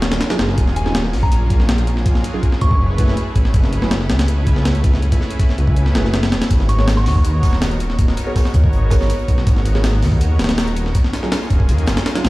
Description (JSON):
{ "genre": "drum and bass, jungle", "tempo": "162 BPM", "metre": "4/4", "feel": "straight", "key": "unclear", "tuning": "A4 = 439 Hz", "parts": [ { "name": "lush unison pad", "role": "sustained chords", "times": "0.0-12.3 s", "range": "F#3 to C#5", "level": "-27 LUFS", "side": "equal", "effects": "chorus" }, { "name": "detuned saw bass", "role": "bass", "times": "0.0-12.3 s", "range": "D#1 to D#2", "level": "-17 LUFS", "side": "equal", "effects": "none" }, { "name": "breakbeat sampler-style drum kit", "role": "drums", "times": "0.0-12.3 s", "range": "hi-hat, kick drum, snare drum", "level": "-16 LUFS", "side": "equal", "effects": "none" }, { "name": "deep mellow chord stab", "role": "stabs", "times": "0.3-12.2 s", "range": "F#3 to C#5", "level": "-27 LUFS", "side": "right 1 dB", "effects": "chorus, dub echo" }, { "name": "soft synth bell", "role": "melody", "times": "0.8-2.8, 6.7-7.3 s", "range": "G#5 to C#6", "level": "-28 LUFS", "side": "equal", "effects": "chorus, dub echo" }, { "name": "swinging big-band drum kit", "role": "drums", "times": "6.5-12.3 s", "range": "hi-hat, snare drum", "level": "-36 LUFS", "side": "right 2 dB", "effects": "high-pass filter on hats, high-pass filter on snare, high-pass filter on room" } ], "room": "little or no reverb", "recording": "played on a big sound system in a bare room, stone room reverb", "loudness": "-14 LUFS", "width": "side -19 dB against mid", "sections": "0.0-12.3 A section", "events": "none", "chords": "0.0 D#m11; 2.8 F#m11; 6.5 G#m11; 10.9 D#m11" }